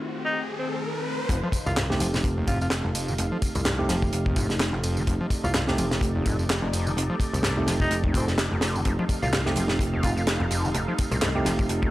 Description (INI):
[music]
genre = breakbeat, breaks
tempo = 127 BPM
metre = 4/4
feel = swing 56% on 16ths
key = unclear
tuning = A4 = 441 Hz
[part]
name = phased analog pad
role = sustained chords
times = 0.0-11.9 s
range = Eb3 to F5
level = -35 LUFS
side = left 1 dB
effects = phaser, chorus, vintage 12-bit sampler grit, sidechain pumping
[part]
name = tine electric piano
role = stabs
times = 0.0-11.9 s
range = A3 to G4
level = -31 LUFS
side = right 2 dB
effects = analog delay
[part]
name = riser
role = sound effects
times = 0.0-1.3 s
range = none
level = -32 LUFS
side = left 1 dB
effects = none
[part]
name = breathy alto saxophone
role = melody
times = 0.3-10.2 s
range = C4 to F4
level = -31 LUFS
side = equal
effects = telephone sound, analog delay
[part]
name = overdriven acid bass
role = riff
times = 1.3-11.9 s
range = Eb2 to F3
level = -31 LUFS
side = equal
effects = analog delay
[part]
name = picked electric bass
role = bass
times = 1.3-11.9 s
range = F1 to C2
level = -28 LUFS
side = equal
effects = none
[part]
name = house drum kit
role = drums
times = 1.3-11.8 s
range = handclaps, ride cymbal, tambourine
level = -34 LUFS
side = equal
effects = none
[part]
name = tight funk drum kit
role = drums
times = 1.3-11.9 s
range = hi-hat, kick drum, snare drum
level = -27 LUFS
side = equal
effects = none
[part]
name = congas and bongos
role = percussion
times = 8.9-11.6 s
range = none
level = -36 LUFS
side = left 2 dB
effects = none
[sound]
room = light reverb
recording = dry, gritty hardware recording, transformer saturation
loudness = -23 LUFS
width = side -16 dB against mid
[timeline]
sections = 0.0-1.3 A section; 1.3-11.9 B section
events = riser 0.0-1.3; filter sweep on analog synth pad 0.0-1.3; drop 1.3-11.9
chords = 0.0 F7 (rootless); 1.3 F7